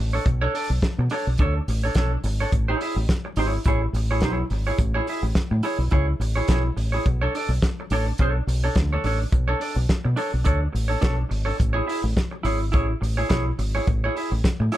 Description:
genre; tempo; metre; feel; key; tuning
disco; 106 BPM; 4/4; swing 56% on 16ths; B dorian; A4 = 440 Hz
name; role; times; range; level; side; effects
deep dub fingered electric bass; bass; 0.0-14.7 s; G#1 to B2; -23 LUFS; equal; none
semi-hollow electric guitar; accompaniment; 0.1-14.8 s; D4 to E5; -27 LUFS; right 2 dB; none
warm soul drum kit; drums; 0.3-14.8 s; hi-hat, kick drum, snare drum; -25 LUFS; equal; none
room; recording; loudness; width
little or no reverb; dark, warm production; -20 LUFS; side -14 dB against mid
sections
0.0-14.8 A section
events
none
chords
0.0 Bm9; 2.5 Amaj7; 7.1 Bm9; 11.6 Amaj7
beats
| 0.26 0.83 1.39 1.96 | 2.53 3.09 3.66 4.23 | 4.79 5.36 5.93 6.50 | 7.06 7.63 8.20 8.77 | 9.33 9.90 10.47 11.03 | 11.60 12.17 12.74 13.30 | 13.87 14.44

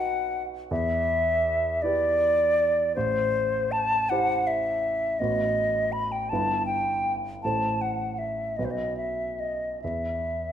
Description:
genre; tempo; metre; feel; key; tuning
classical, romantic duo for flute and grand piano; 53 BPM (dotted quarters); 6/8; rubato; E minor; A4 = 440 Hz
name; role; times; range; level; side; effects
hollow concert flute; melody; 0.0-10.5 s; C5 to B5; -24 LUFS; left 1 dB; none
warm concert grand piano; accompaniment; 0.0-10.5 s; G1 to C5; -31 LUFS; right 2 dB; none
room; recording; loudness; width
moderate recital hall reverb, RT60 1.6 s; minimal, uncompressed stereo recording; -24 LUFS; side -9 dB against mid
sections
0.0-10.5 A section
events
none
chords
0.0 B; 0.7 Em; 3.0 Am7; 5.2 B7/A; 6.3 Em/G; 7.4 Am; 8.6 B5; 9.8 N.C.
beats
| 0.70 1.82 | 2.95 4.08 | 5.19 6.30 | 7.42 8.57 | 9.82

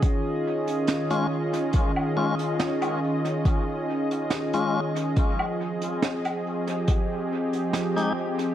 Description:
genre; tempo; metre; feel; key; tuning
ambient dub; 70 BPM; 4/4; straight; unclear; A4 = 441 Hz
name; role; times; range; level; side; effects
warm analog pad; sustained chords; 0.0-8.5 s; Eb3 to Eb5; -26 LUFS; equal; chorus
electronic kick drum; drums; 0.0-7.1 s; none; -23 LUFS; equal; overdrive
vintage brush drum kit; drums; 0.0-8.5 s; hi-hat, snare drum, woodblock; -31 LUFS; right 2 dB; dub echo
tonewheel organ; stabs; 1.1-8.1 s; Ab3 to G4; -30 LUFS; left 3 dB; overdrive, dub echo
room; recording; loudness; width
light reverb, small room ambience; none; -23 LUFS; side -11 dB against mid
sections
0.0-8.5 A section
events
none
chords
0.0 Eb7sus4; 5.2 Fm9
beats
0.03 0.88 | 1.74 2.60 3.45 4.31 | 5.17 6.03 6.88 7.74

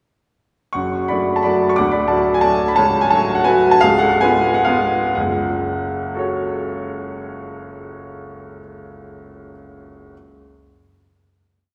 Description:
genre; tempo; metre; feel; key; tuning
classical, piano waltz; 118-188 BPM; 3/4; rubato; F# minor; A4 = 441 Hz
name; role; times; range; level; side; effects
bright upright piano; solo; 0.7-10.1 s; C#1 to D6; -18 LUFS; equal; none
room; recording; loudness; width
wet concert hall reverb, RT60 1.9 s; heard from further back in the room; -17 LUFS; mono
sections
0.8-5.2 A section; 5.2-8.1 final chord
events
slowing down 2.3-5.2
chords
0.8 F#m; 1.8 D; 2.8 F#m/C#; 3.8 C#7; 5.2 F#m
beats
| 0.76 1.10 1.46 | 1.79 2.12 2.46 | 2.79 3.13 3.48 | 3.84 4.24 4.68 | 5.17 5.65 6.14 | 6.62 7.09 7.58

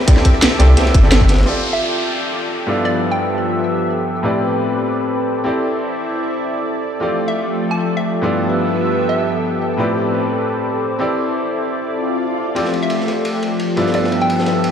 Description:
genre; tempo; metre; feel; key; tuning
liquid drum and bass; 173 BPM; 4/4; swing 53% on 16ths; unclear; A4 = 441 Hz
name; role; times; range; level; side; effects
lush unison pad; sustained chords; 0.0-14.7 s; F3 to D6; -19 LUFS; left 1 dB; chorus
crunchy breakbeat drum kit; drums; 0.0-1.5, 12.6-14.7 s; ride cymbal, snare drum; -25 LUFS; equal; high-pass filter on cymbals, high-pass filter on snare, high-pass filter on room
bright grand piano; accompaniment; 0.1-14.7 s; G2 to D5; -22 LUFS; equal; low-pass filter, digital delay
drum and bass drum kit; drums; 0.1-1.4 s; hi-hat, rim click, snare drum; -17 LUFS; right 1 dB; low-pass filter on hats, low-pass filter on snare
electronic kick drum; drums; 0.1-1.3 s; none; -11 LUFS; equal; none
sub bass with octave; bass; 0.6-1.5 s; G1 to C2; -12 LUFS; equal; none
downlifter and swell; sound effects; 1.5-4.2, 12.0-12.6 s; none; -26 LUFS; equal; none
hollow square pluck; melody; 1.7-3.4, 7.3-9.4, 12.8-14.5 s; D5 to A5; -25 LUFS; equal; chorus, ping-pong delay
room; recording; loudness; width
light reverb; played on a big sound system in a bare room, large studio reverb; -15 LUFS; side -8 dB against mid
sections
0.0-1.5 A section; 1.5-14.7 B section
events
drop 0.0-1.5; swell 12.0-12.6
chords
0.0 C69; 1.5 F69; 2.7 G13; 4.2 Am11; 5.5 C69; 7.0 F69; 8.2 G13; 9.8 Am11; 11.0 C69; 12.6 F69; 13.8 G13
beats
| 0.08 0.42 0.77 1.12 | 1.46 1.81 2.16 2.50 | 2.85 3.20 3.54 3.89 | 4.24 4.58 4.93 5.28 | 5.63 5.97 6.32 6.67 | 7.01 7.36 7.71 8.05 | 8.40 8.75 9.09 9.44 | 9.79 10.13 10.48 10.83 | 11.18 11.52 11.87 12.21 | 12.56 12.91 13.26 13.60 | 13.95 14.30 14.64

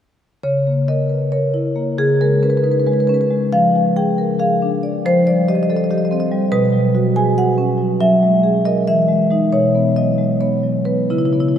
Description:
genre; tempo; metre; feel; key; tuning
classical, contemporary piece for solo marimba; 276 BPM (eighths); 7/8; rubato; unclear; A4 = 439 Hz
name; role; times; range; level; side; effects
marimba with medium hard mallets; solo; 0.4-11.6 s; B2 to G#5; -14 LUFS; equal; none
room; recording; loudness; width
wet cathedral reverb, RT60 5.2 s; none; -14 LUFS; side -9 dB against mid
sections
0.4-11.6 A section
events
none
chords
0.4 C#m6; 2.0 B69/C#; 3.5 Fm6; 5.0 D#69/E#; 6.5 Bsus2; 8.0 F#9; 8.9 Emaj7; 9.5 Badd9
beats
| 0.43 0.65 0.87 1.09 1.31 1.53 1.75 | 1.97 2.19 2.42 2.64 2.86 3.08 3.30 | 3.52 3.74 3.96 4.17 4.39 4.61 4.82 | 5.04 5.25 5.46 5.68 5.89 6.10 6.31 | 6.52 6.73 6.95 7.16 7.38 7.59 7.80 | 8.01 8.23 8.44 8.66 8.88 9.10 9.32 | 9.54 9.75 9.97 10.19 10.41 10.64 10.87 | 11.10 11.33 11.56

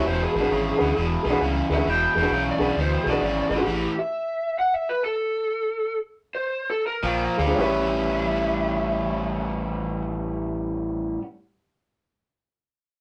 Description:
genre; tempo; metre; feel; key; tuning
electric blues shuffle; 106-133 BPM; 4/4; swing 65% on 8ths; A mixolydian; A4 = 439 Hz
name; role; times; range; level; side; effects
lead guitar through a small cranked amp; melody; 0.0-11.2 s; G4 to G5; -28 LUFS; equal; overdrive
warm upright piano; accompaniment; 0.0-3.7, 7.4-11.2 s; C#4 to C5; -29 LUFS; equal; none
raw garage guitar; riff; 0.0-3.9, 7.0-11.2 s; E2 to C#4; -28 LUFS; equal; overdrive
deep dub fingered electric bass; bass; 0.1-3.9, 7.0-11.2 s; E1 to D2; -31 LUFS; equal; none
room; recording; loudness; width
moderate studio reverb, RT60 0.5 s; rough rehearsal-room recording, tube saturation; -24 LUFS; mono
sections
0.0-7.6 A section; 7.6-12.1 B section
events
slowing down 3.7-7.6; stop 3.7-7.0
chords
0.0 E7; 3.7 A5; 7.0 Bb9; 7.6 A9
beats
| 0.05 0.50 0.95 1.40 | 1.85 2.30 2.75 3.20 | 3.65 4.11 4.56 5.03 | 5.50 6.00 6.50 7.03 | 7.58 8.14 8.71 9.27 | 9.83 10.40 10.96

